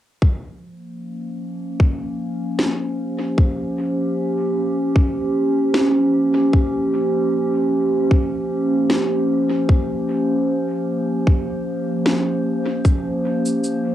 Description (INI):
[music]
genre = ambient dub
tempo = 76 BPM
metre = 4/4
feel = swing 54% on 16ths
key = Bb dorian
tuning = A4 = 439 Hz
[part]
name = warbly tape-like pad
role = sustained chords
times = 0.2-13.9 s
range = F3 to C5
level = -19 LUFS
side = equal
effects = chorus, built-in reverb, cassette tape, plate reverb
[part]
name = electronic kick drum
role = drums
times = 0.2-13.0 s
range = none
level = -16 LUFS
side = equal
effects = overdrive, cassette tape
[part]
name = electronic snare drum and cabasa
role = drums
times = 2.6-13.8 s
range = none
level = -23 LUFS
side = equal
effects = overdrive, cassette tape, dub echo
[sound]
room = wet studio reverb, RT60 0.5 s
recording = home recording on cassette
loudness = -17 LUFS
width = side -12 dB against mid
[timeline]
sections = 0.2-13.9 A section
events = none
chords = 0.2 Bbm69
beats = | 0.22 1.01 1.80 2.59 | 3.38 4.17 4.96 5.75 | 6.53 7.32 8.11 8.90 | 9.69 10.48 11.27 12.06 | 12.85 13.64